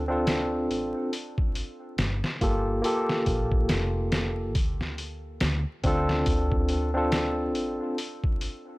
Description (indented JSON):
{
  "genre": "trip hop",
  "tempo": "70 BPM",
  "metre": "4/4",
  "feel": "swing 59% on 16ths",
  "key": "D minor",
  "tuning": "A4 = 439 Hz",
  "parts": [
    { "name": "barky tine electric piano", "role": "accompaniment", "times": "0.0-8.0 s", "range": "Bb3 to A4", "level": "-28 LUFS", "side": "equal", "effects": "harmonic tremolo, tape echo" },
    { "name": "deep dub fingered electric bass", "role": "bass", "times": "0.0-7.8 s", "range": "F1 to D2", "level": "-30 LUFS", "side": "equal", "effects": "transformer saturation" },
    { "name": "trip hop sampler-style drum kit", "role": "drums", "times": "0.3-8.7 s", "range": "hi-hat, kick drum, snare drum", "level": "-27 LUFS", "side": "equal", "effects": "none" }
  ],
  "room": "little or no reverb",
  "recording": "dry, gritty hardware recording, vinyl crackle",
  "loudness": "-24 LUFS",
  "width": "side -21 dB against mid",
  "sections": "0.0-8.8 A section",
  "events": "none",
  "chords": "0.0 Dm7; 1.1 Gm9; 4.6 Dm7; 8.0 N.C."
}